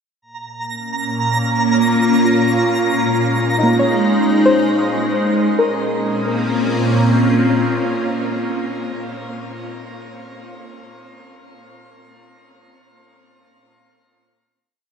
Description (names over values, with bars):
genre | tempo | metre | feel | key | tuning
ambient | 67 BPM | 3/4 | straight | Bb minor | A4 = 440 Hz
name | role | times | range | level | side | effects
evolving wavetable pad | sustained chords | 0.9-9.0 s | Bb2 to F4 | -16 LUFS | equal | ensemble chorus, built-in reverb, phaser
twinkling granular texture | texture | 0.2-5.6 s | Bb5 | -24 LUFS | right 1 dB | built-in reverb
soft round pluck | arpeggios | 2.2-8.7 s | Bb3 to Db5 | -21 LUFS | left 1 dB | chorus, ping-pong delay
room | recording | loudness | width
wet shimmer reverb, RT60 7.6 s | none | -14 LUFS | side -6 dB against mid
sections
0.2-5.6 A section; 5.6-8.3 final chord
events
fade-in on synth pluck 0.2-5.6; fade-out on synth texture 0.2-5.6; filter sweep on ambient pad 0.2-5.6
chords
0.2 Bbm; 2.9 Absus4; 5.6 Bbmadd9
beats
| 0.21 1.11 2.00 | 2.90 3.79 4.69 | 5.58 6.48 7.38